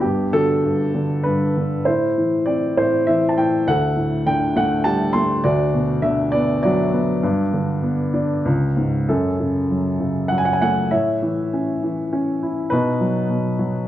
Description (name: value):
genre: classical, lyrical solo piano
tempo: 100 BPM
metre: 3/4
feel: rubato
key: F# dorian from 9.1 s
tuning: A4 = 440 Hz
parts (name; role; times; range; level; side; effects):
- warm upright piano; solo; 0.0-13.9 s; C#2 to C6; -17 LUFS; equal; none
room: moderate recital hall reverb, RT60 1.5 s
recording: dark, warm production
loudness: -17 LUFS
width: side -12 dB against mid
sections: 0.0-9.1 A section; 9.1-13.9 B section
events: none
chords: 0.0 Gmaj7; 1.9 Am; 3.7 Dsus4; 5.4 Bm/D; 7.2 G; 8.5 C#5; 9.1 F#m; 10.9 A; 12.7 B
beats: | 0.03 0.63 1.25 | 1.86 2.47 3.07 | 3.67 4.26 4.85 | 5.45 6.04 6.64 | 7.24 7.84 8.46 | 9.09 9.70 10.31 | 10.91 11.51 12.11 | 12.70 13.29 13.88